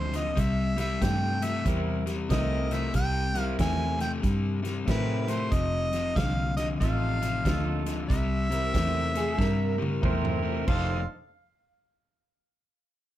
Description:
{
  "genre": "electric blues shuffle",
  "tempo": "93 BPM",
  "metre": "4/4",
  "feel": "swing 63% on 8ths",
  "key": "F major",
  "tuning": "A4 = 440 Hz",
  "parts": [
    { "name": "clear harmonica", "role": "melody", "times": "0.0-11.1 s", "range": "B4 to Ab5", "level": "-32 LUFS", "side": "equal", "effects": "overdrive, slapback echo, plate reverb" },
    { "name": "overdriven semi-hollow guitar", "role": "riff", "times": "0.0-11.0 s", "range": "F2 to D4", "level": "-31 LUFS", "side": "left 5 dB", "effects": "none" },
    { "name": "vintage muted fingered electric bass", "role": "bass", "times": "0.0-11.1 s", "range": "F1 to A2", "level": "-30 LUFS", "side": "right 1 dB", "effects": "none" },
    { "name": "natural country drum kit", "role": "drums", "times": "0.1-10.9 s", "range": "crash cymbal, hi-hat, kick drum, snare drum, toms", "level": "-31 LUFS", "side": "equal", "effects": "none" },
    { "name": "dark horn section", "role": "stabs", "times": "1.6-11.1 s", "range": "C4 to Bb4", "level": "-35 LUFS", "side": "right 3 dB", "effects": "slapback echo" },
    { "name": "electric guitar through a small old amp", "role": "second line", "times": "9.2-11.1 s", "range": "Ab4 to C5", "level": "-34 LUFS", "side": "right 5 dB", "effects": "analog chorus" }
  ],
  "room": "light reverb",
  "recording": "none",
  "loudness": "-25 LUFS",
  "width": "side -13 dB against mid",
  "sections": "0.0-10.7 A section; 10.7-13.2 B section",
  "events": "drum fill 9.4-10.7",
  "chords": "0.4 C7; 5.5 F7; 8.1 C7; 10.7 F13"
}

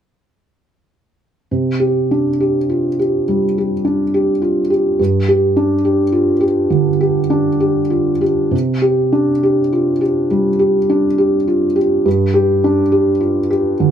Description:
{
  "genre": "neoclassical minimalist piano",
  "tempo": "69 BPM",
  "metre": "4/4",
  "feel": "rubato",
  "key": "unclear",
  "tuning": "A4 = 440 Hz",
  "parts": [
    { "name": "felt-muted upright piano", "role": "solo", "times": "1.5-13.9 s", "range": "G2 to G4", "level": "-13 LUFS", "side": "equal", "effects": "none" }
  ],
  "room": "light reverb",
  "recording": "close, detailed microphones",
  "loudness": "-13 LUFS",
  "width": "side -9 dB against mid",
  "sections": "1.5-8.5 A section; 8.5-13.9 B section",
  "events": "none",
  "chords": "1.5 Csus2; 5.0 G5; 8.5 Csus2; 12.1 G5"
}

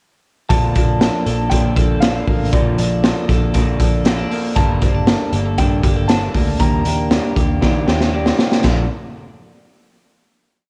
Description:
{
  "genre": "jangly indie pop",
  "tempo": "118 BPM",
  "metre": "4/4",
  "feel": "straight",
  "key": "Bb major",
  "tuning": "A4 = 440 Hz",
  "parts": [
    { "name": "warm upright piano", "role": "melody", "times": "0.5-7.3 s", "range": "D5 to Bb5", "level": "-27 LUFS", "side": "equal", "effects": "none" },
    { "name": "electric guitar through a small old amp", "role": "accompaniment", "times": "0.5-8.9 s", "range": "G2 to A4", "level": "-26 LUFS", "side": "equal", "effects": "cassette tape" },
    { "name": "twelve-string electric guitar", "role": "arpeggios", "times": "0.5-8.9 s", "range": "F3 to A4", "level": "-27 LUFS", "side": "equal", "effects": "cassette tape" },
    { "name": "vintage muted picked electric bass", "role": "bass", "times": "0.5-8.9 s", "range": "G1 to Eb3", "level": "-23 LUFS", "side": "equal", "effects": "none" },
    { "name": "raw garage drum kit", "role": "drums", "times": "0.5-8.8 s", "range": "crash cymbal, hi-hat, kick drum, snare drum", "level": "-19 LUFS", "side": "equal", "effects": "cassette tape" }
  ],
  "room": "light reverb, studio reverb",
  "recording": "home recording on cassette",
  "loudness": "-16 LUFS",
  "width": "mono",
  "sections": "0.5-8.6 chorus; 8.6-10.7 final chord",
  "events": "drum fill 7.6-8.6",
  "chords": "0.5 Bbmaj7; 4.6 Gmadd9; 6.6 Ebmaj7; 8.6 Bbmaj7"
}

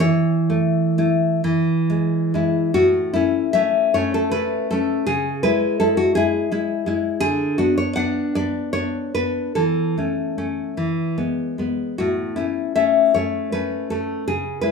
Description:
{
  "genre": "romantic piece for solo classical guitar",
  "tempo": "41-56 BPM (dotted quarters)",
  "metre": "6/8",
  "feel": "rubato",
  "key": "A major",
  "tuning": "A4 = 441 Hz",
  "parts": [
    { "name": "nylon-string guitar", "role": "solo", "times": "0.0-14.7 s", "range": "A2 to F#5", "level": "-18 LUFS", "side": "left 1 dB", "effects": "none" }
  ],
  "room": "moderate large studio reverb, RT60 0.8 s",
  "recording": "band playing live in one room, small room ambience",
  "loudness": "-18 LUFS",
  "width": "side -5 dB against mid",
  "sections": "0.0-2.8 A section; 2.8-14.7 B section",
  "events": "none",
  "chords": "0.0 A/E; 1.4 E; 2.8 A; 5.1 C#m; 7.2 Bm/D; 9.5 A/E; 10.8 E; 12.0 A"
}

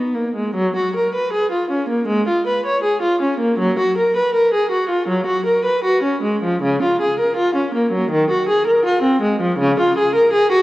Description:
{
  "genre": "classical, baroque-style suite movement for unaccompanied viola",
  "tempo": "80 BPM",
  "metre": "4/4",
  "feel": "rubato",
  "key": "F# major",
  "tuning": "A4 = 442 Hz",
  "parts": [
    { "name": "rich viola", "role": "solo", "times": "0.0-10.6 s", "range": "C#3 to C#5", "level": "-15 LUFS", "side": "equal", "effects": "none" }
  ],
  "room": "wet scoring stage reverb, RT60 1.8 s",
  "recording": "worn, warbling old tape, cassette tape, warbly pitch drift",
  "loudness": "-15 LUFS",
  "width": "side -17 dB against mid",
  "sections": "0.5-10.6 A section",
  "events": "none",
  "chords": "none"
}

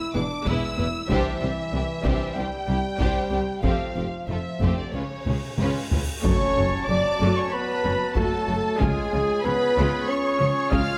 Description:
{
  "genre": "cinematic, epic orchestral film score",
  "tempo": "94 BPM",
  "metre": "4/4",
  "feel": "straight",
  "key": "C major",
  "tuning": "A4 = 439 Hz",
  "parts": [
    { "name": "rich symphonic violin section", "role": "melody", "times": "0.0-11.0 s", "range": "Db5 to E#6", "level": "-34 LUFS", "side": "equal", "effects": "none" },
    { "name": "mellow French horn section", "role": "sustained chords", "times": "0.0-11.0 s", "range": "Db3 to D5", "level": "-33 LUFS", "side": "equal", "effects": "none" },
    { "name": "warm symphonic violin section", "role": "second line", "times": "0.1-11.0 s", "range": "B3 to E#5", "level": "-35 LUFS", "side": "equal", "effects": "none" },
    { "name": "rich chamber viola section", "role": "accompaniment", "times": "0.1-11.0 s", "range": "C#3 to F#4", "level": "-34 LUFS", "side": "equal", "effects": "none" },
    { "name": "rich symphonic cello section", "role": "bass", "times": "0.1-10.8 s", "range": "C2 to C#3", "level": "-32 LUFS", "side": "equal", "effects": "none" },
    { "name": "rich symphonic double bass section", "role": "bass", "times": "0.2-10.8 s", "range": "E1 to Db2", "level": "-32 LUFS", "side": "equal", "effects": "none" },
    { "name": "taiko ensemble", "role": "drums", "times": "0.5-11.0 s", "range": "none", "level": "-30 LUFS", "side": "equal", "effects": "none" },
    { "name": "cymbal swell and impact", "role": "sound effects", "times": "5.2-8.8 s", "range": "none", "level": "-39 LUFS", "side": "equal", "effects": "none" },
    { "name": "mellow large flute ensemble", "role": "second line", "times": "6.2-11.0 s", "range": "G#4 to E#5", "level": "-32 LUFS", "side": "equal", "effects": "none" },
    { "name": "mellow woodwind section", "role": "sustained chords", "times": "6.2-11.0 s", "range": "F#3 to A5", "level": "-34 LUFS", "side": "equal", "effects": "none" },
    { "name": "warm trumpet", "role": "stabs", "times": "6.2-11.0 s", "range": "G#4 to E#5", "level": "-31 LUFS", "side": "equal", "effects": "none" }
  ],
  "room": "moderate scoring stage reverb, RT60 2.0 s",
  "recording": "close, detailed microphones",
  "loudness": "-24 LUFS",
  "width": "mono",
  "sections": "0.0-6.2 A section; 6.2-11.0 B section",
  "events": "cymbal swell 5.2-6.2; drum fill 5.3-6.2; impact 6.2-8.8",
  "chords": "0.0 E; 1.1 Cadd9; 3.6 Fadd9; 4.9 Db7; 6.2 F#m; 8.8 C#"
}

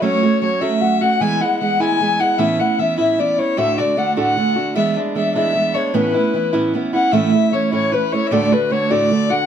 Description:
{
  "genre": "celtic folk",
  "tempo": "101 BPM (dotted quarters)",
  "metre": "6/8",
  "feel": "straight",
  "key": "A major",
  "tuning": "A4 = 439 Hz",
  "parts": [
    { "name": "mellow hollow wooden flute", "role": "melody", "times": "0.0-9.5 s", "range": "B4 to G#5", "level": "-20 LUFS", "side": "left 1 dB", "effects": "plate reverb" },
    { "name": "warm fiddle", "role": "second line", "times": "0.0-9.5 s", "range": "B4 to G#5", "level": "-22 LUFS", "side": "left 8 dB", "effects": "none" },
    { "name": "picked steel-string acoustic guitar", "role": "accompaniment", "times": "0.0-9.5 s", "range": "D2 to F#4", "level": "-18 LUFS", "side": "right 3 dB", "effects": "none" }
  ],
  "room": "moderate studio reverb, RT60 0.6 s",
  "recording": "none",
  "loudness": "-15 LUFS",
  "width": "side -8 dB against mid",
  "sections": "0.0-7.1 A section; 7.1-9.5 B section",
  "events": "none",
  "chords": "0.0 F#m; 1.2 E; 2.4 Aadd9; 3.6 D; 4.8 E7; 5.9 Aadd9; 7.1 A; 8.3 D"
}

